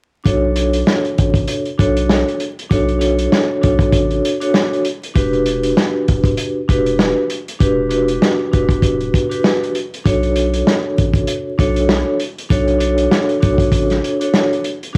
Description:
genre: hip hop, boom-bap hip-hop.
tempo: 98 BPM.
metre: 4/4.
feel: swing 58% on 16ths.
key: B minor.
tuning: A4 = 440 Hz.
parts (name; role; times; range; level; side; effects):
vibraphone with medium mallets; accompaniment; 0.2-15.0 s; D4 to C#5; -19 LUFS; equal; cassette tape, high-pass filter, low-pass filter.
soft dub sub bass; bass; 0.3-15.0 s; D1 to B1; -23 LUFS; equal; none.
vintage drum kit; drums; 0.3-15.0 s; hi-hat, kick drum, snare drum; -19 LUFS; equal; cassette tape.
room: small room ambience.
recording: home recording on cassette, vinyl crackle.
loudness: -16 LUFS.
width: mono.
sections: 0.3-15.0 A section.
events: none.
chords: 0.3 Bm7; 5.2 Em7; 10.1 Bm7.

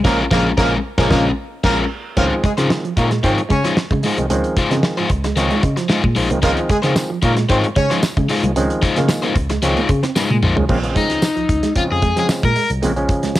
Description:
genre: funk.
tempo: 113 BPM.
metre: 4/4.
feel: straight.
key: Bb minor.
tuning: A4 = 440 Hz.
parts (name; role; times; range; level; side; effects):
warm horn section; second line; 0.0-8.0 s; Ab3 to Db5; -22 LUFS; right 1 dB; cassette tape, plate reverb.
crunchy overdriven guitar; accompaniment; 0.0-12.7 s; Ab3 to Db5; -20 LUFS; left 4 dB; cassette tape, plate reverb.
mellow clav; stabs; 0.0-13.4 s; Db3 to Eb5; -22 LUFS; right 1 dB; auto-wah, cassette tape, plate reverb.
tine electric piano; bass; 0.0-13.3 s; Bb1 to Db3; -21 LUFS; equal; lush chorus.
damped 70s drum kit; drums; 0.0-13.4 s; crash cymbal, hi-hat, kick drum, snare drum, toms; -20 LUFS; equal; cassette tape.
electric guitar through a small old amp; riff; 2.2-13.3 s; F3 to Db4; -25 LUFS; right 6 dB; spring reverb, cassette tape.
tambourine; percussion; 7.0-13.4 s; none; -32 LUFS; left 1 dB; none.
room: light reverb.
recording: home recording on cassette.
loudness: -15 LUFS.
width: side -15 dB against mid.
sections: 0.0-2.2 A section; 2.2-10.7 B section; 10.7-13.4 C section.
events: band accent 0.0-2.2; clav fill 5.4-6.4; drum fill 10.2-10.7; overdriven electric guitar solo 10.7-13.4.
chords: 0.0 Bbm7.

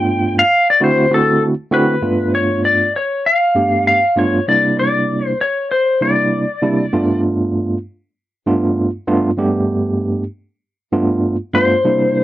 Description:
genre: blues.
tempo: 98 BPM.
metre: 4/4.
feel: swing 55% on 16ths.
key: G mixolydian.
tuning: A4 = 440 Hz.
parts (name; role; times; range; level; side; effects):
clean lap steel guitar; melody; 0.0-7.2, 11.5-12.2 s; A4 to G5; -15 LUFS; left 2 dB; none.
overdriven tine electric piano; accompaniment; 0.0-12.2 s; G2 to G4; -16 LUFS; right 2 dB; fast tremolo.
room: little or no reverb.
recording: dry, close 1970s-style studio recording.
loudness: -13 LUFS.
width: side -14 dB against mid.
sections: 0.0-2.0 A section; 2.0-12.2 B section.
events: electric slide guitar solo 0.0-2.0.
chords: 0.0 G9; 0.8 D9; 2.0 G9; 4.5 C9; 6.9 G9.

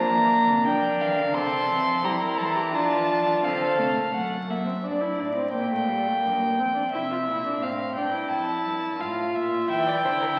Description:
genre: classical, baroque-style fugue for string quartet.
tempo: 86 BPM.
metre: 4/4.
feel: straight.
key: unclear.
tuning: A4 = 438 Hz.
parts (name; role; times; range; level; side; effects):
warm violin; melody; 0.0-10.4 s; D5 to C6; -28 LUFS; equal; none.
warm violin; second line; 0.0-4.1, 9.7-10.3 s; D4 to E5; -31 LUFS; equal; none.
warm viola; accompaniment; 0.0-10.4 s; G3 to F4; -29 LUFS; equal; none.
warm cello; bass; 0.0-10.4 s; F2 to G3; -36 LUFS; equal; none.
room: wet scoring stage reverb, RT60 1.7 s.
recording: very old 78 rpm record, vinyl crackle.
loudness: -25 LUFS.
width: mono.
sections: 0.0-4.1 A section; 4.1-10.4 B section.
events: none.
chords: 0.0 Bb; 1.4 C7; 2.7 F; 4.1 D7/F#; 5.5 Gm/Bb; 6.9 C7; 8.3 F; 9.7 Em7.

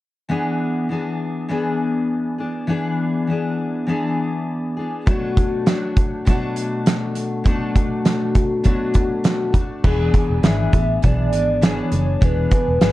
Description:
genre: indie pop, bedroom pop.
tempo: 101 BPM.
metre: 4/4.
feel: swing 55% on 16ths.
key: unclear.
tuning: A4 = 440 Hz.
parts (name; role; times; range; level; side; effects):
picked steel-string acoustic guitar; accompaniment; 0.3-12.9 s; B2 to G#4; -21 LUFS; left 2 dB; lush chorus, vibrato effect.
loose indie drum kit; drums; 5.1-12.9 s; crash cymbal, hi-hat, kick drum, snare drum; -18 LUFS; right 1 dB; none.
vintage muted fingered electric bass; bass; 9.8-12.9 s; E1 to B1; -21 LUFS; equal; none.
warbly nostalgic lead; melody; 9.9-12.9 s; G#4 to E5; -23 LUFS; equal; wide subtle chorus.
room: light reverb.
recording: dark, warm production.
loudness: -17 LUFS.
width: side -16 dB against mid.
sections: 0.3-9.8 A section; 9.8-12.9 B section.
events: none.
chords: 0.3 E7; 5.1 Bm7; 9.8 E7.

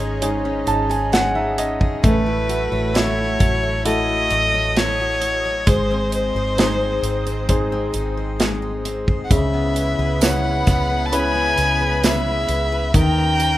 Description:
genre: pop ballad.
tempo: 66 BPM.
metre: 4/4.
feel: straight.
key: C# minor.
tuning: A4 = 440 Hz.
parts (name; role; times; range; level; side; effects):
warm violin; melody; 0.0-13.6 s; B4 to A5; -21 LUFS; equal; none.
clear concert grand piano; accompaniment; 0.0-13.6 s; C#3 to A5; -24 LUFS; right 1 dB; none.
lush unison pad; sustained chords; 0.0-13.6 s; C#3 to D#5; -32 LUFS; equal; chorus.
picked steel-string acoustic guitar; arpeggios; 0.0-13.6 s; G#2 to C#5; -27 LUFS; left 3 dB; none.
vintage muted fingered electric bass; bass; 0.0-13.6 s; G#1 to D#2; -25 LUFS; equal; none.
modern studio drum kit; drums; 0.0-13.6 s; hi-hat, kick drum, snare drum; -19 LUFS; equal; none.
rich studio violin section; second line; 9.3-13.6 s; A#5 to B5; -30 LUFS; left 2 dB; none.
tambourine; percussion; 9.3-13.6 s; none; -33 LUFS; right 6 dB; none.
room: light reverb.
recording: rough home demo mix.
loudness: -17 LUFS.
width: side -14 dB against mid.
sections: 0.0-13.6 A section.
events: grand piano fill 0.2-2.0.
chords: 0.0 G#sus4; 2.0 F#m7/A; 5.7 G#; 9.3 C#m7; 12.9 D#7.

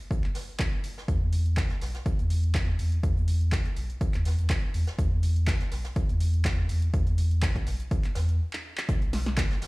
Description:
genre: acid house.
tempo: 123 BPM.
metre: 4/4.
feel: swing 54% on 16ths.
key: unclear.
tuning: A4 = 442 Hz.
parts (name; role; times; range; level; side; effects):
warm sub bass; bass; 0.1-9.7 s; F#1 to E2; -26 LUFS; equal; sidechain pumping.
electronic kick drum; drums; 0.1-9.5 s; none; -28 LUFS; equal; overdrive.
soft brush drum kit; drums; 0.1-9.7 s; hi-hat, snare drum; -44 LUFS; right 1 dB; sidechain pumping on hats, high-pass filter on hats, high-pass filter on snare, high-pass filter on room.
punchy analog drum machine; drums; 0.2-9.7 s; handclaps, hi-hat, snare drum; -36 LUFS; equal; overdrive.
room: studio ambience.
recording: played on a big sound system in a bare room, stone room reverb.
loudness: -24 LUFS.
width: side -23 dB against mid.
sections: 0.0-8.9 A section.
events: stop 8.4-8.9; drum fill 8.5-8.9.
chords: none.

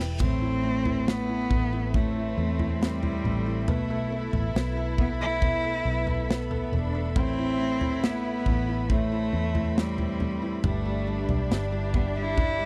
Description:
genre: pop ballad.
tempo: 69 BPM.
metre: 4/4.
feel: straight.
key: A minor.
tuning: A4 = 440 Hz.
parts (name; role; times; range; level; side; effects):
clear concert grand piano; accompaniment; 0.0-12.7 s; E3 to G5; -36 LUFS; equal; none.
warm studio string section; sustained chords; 0.0-12.7 s; E4 to B5; -43 LUFS; equal; none.
picked steel-string acoustic guitar; arpeggios; 0.0-12.7 s; E2 to E4; -43 LUFS; equal; none.
vintage muted fingered electric bass; bass; 0.0-12.7 s; E1 to E2; -32 LUFS; equal; none.
modern studio drum kit; drums; 0.0-12.6 s; crash cymbal, kick drum, snare drum, toms; -30 LUFS; equal; none.
rich cello; melody; 0.2-12.7 s; G3 to E4; -32 LUFS; equal; none.
clear studio cello section; second line; 0.2-12.7 s; A3 to E4; -40 LUFS; equal; none.
room: little or no reverb.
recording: dry, close 1970s-style studio recording.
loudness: -27 LUFS.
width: mono.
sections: 0.2-12.7 A section.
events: drum fill 0.0; grand piano fill 0.0.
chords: 0.2 Amadd9; 3.7 Esus4; 7.2 Amadd9; 10.6 Em7/G.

